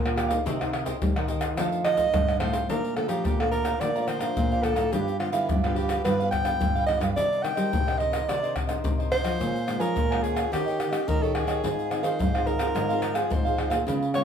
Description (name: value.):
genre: samba and choro.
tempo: 107 BPM.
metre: 4/4.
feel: straight.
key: Bb major.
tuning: A4 = 440 Hz.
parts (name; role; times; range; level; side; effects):
nylon-string guitar; accompaniment; 0.0-14.2 s; F2 to Bb4; -35 LUFS; left 3 dB; none.
nylon-string guitar; bass; 0.0-14.2 s; G2 to G3; -30 LUFS; equal; none.
egg shaker, pandeiro, tamborim and surdo; percussion; 0.1-14.2 s; none; -28 LUFS; left 2 dB; none.
cavaquinho; accompaniment; 0.2-14.2 s; D4 to Bb5; -31 LUFS; right 4 dB; none.
clear soprano saxophone; melody; 1.8-14.2 s; E4 to G5; -28 LUFS; right 2 dB; none.
room: moderate studio ambience, RT60 0.5 s.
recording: band playing live in one room.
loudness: -23 LUFS.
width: side -7 dB against mid.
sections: 0.0-2.7 A section; 2.7-14.2 B section.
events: none.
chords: 0.5 Cm7; 1.6 F13; 2.7 Bbmaj7; 4.9 G7; 7.2 Cm9; 9.4 Bbm7; 10.5 Eb7; 11.6 Ab6.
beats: | 0.46 1.01 1.57 2.13 | 2.69 3.25 3.81 4.37 | 4.93 5.49 6.05 6.61 | 7.17 7.73 8.29 8.85 | 9.40 9.96 10.52 11.08 | 11.64 12.20 12.76 13.31 | 13.87.